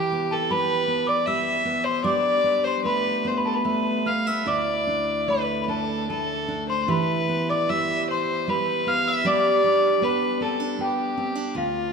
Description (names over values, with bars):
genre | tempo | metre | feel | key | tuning
celtic folk, Celtic slow air | 76 BPM | 3/4 | rubato | unclear | A4 = 440 Hz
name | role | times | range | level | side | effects
warm fiddle | melody | 0.0-11.9 s | F4 to F5 | -24 LUFS | left 2 dB | none
worn celesta | second line | 0.0-11.9 s | F5 to F6 | -28 LUFS | equal | none
picked steel-string acoustic guitar | accompaniment | 0.0-11.9 s | D2 to G4 | -26 LUFS | right 3 dB | none
room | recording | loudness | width
wet church reverb, RT60 3.7 s | minimal, uncompressed stereo recording | -21 LUFS | side -5 dB against mid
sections
0.0-11.9 A section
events
none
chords
0.0 Em; 2.1 Gadd9; 4.5 Dsus2; 6.9 Em; 9.2 G